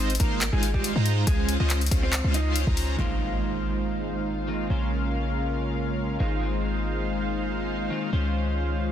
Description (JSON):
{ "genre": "future bass", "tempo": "140 BPM", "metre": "4/4", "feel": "swing 53% on 16ths, half-time", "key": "Ab major", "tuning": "A4 = 440 Hz", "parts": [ { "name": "electric guitar through a small old amp", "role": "melody", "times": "0.0-2.6 s", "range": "G3 to Eb5", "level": "-34 LUFS", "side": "equal", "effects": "sidechain pumping, ping-pong delay" }, { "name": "big bright polysynth", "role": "riff", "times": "0.0-8.9 s", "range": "Ab3 to Bb5", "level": "-28 LUFS", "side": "right 1 dB", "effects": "wide subtle chorus, sidechain pumping" }, { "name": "warm 808-style bass", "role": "bass", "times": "0.0-8.9 s", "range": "Ab1 to Ab2", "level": "-27 LUFS", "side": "equal", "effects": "sidechain pumping" }, { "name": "pop drum kit", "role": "drums", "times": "0.1-3.1 s", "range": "crash cymbal, handclaps, hi-hat", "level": "-30 LUFS", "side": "left 2 dB", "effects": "low-pass filter on hats, studio reverb, low-pass filter on snare, low-pass filter on cymbals" }, { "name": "electronic kick drum", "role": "drums", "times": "0.2-2.8 s", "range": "none", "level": "-26 LUFS", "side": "equal", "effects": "studio reverb" }, { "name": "clean electric guitar", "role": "accompaniment", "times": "3.0-8.9 s", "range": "Db3 to C5", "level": "-34 LUFS", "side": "left 3 dB", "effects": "sidechain pumping, ping-pong delay" }, { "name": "impact", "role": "sound effects", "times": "3.0-4.7 s", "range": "none", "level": "-37 LUFS", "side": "equal", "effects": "none" } ], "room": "light reverb, digital ambience", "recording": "dense, heavily limited modern master", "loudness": "-23 LUFS", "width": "side -10 dB against mid", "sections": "0.0-3.0 A section; 3.0-8.9 B section", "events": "drop 0.0-3.0; impact 3.0-4.7", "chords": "0.0 Ab6; 1.3 Dbmaj7; 3.0 Ab6; 4.7 Bbm7; 6.2 Ab6; 8.1 Dbmaj7", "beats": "0.41 0.84 | 1.27 1.70 2.13 2.56 | 2.99 3.41 3.84 4.27 | 4.70 5.13 5.56 5.99 | 6.41 6.84 7.27 7.70 | 8.13 8.56" }